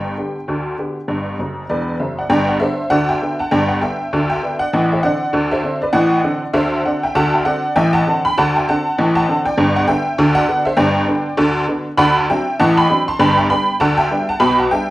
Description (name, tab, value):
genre	ragtime piano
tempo	99 BPM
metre	2/4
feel	swing 58% on 16ths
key	G major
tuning	A4 = 445 Hz
part	honky-tonk upright piano	solo	0.0-14.9 s	E1 to C6	-14 LUFS	equal	none
room	moderate large studio reverb, RT60 0.8 s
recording	band playing live in one room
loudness	-14 LUFS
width	side -17 dB against mid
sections	0.0-2.3 A section; 2.3-14.9 B section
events	honky-tonk piano fill 1.4-2.3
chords	0.0 G; 4.7 D7/A; 9.6 G; 12.0 D7; 13.2 G